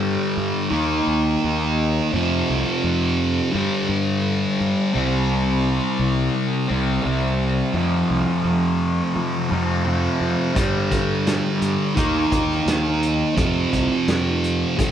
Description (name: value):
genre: psychedelic rock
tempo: 85 BPM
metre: 4/4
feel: straight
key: unclear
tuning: A4 = 439 Hz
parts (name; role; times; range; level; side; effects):
- thick fuzz guitar; riff; 0.0-14.9 s; F2 to Eb4; -20 LUFS; equal; distortion, phaser
- fuzz fingered electric bass; bass; 0.0-14.9 s; C2 to F3; -25 LUFS; equal; overdrive
- vintage drum kit; drums; 10.6-14.9 s; hi-hat, kick drum, snare drum; -24 LUFS; equal; none
room: moderate stone room reverb, RT60 1.1 s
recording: band playing live in one room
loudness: -18 LUFS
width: side -9 dB against mid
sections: 0.0-14.9 A section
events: none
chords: 0.0 G5; 0.7 Eb5; 2.1 F5; 3.5 G5; 4.9 C5; 7.7 F5; 10.6 G5; 12.0 Eb5; 13.4 F5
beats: 0.02 0.73 1.43 | 2.13 2.83 3.54 4.24 | 4.94 5.64 6.34 7.05 | 7.75 8.45 9.15 9.86 | 10.56 11.26 11.96 12.67 | 13.37 14.08 14.78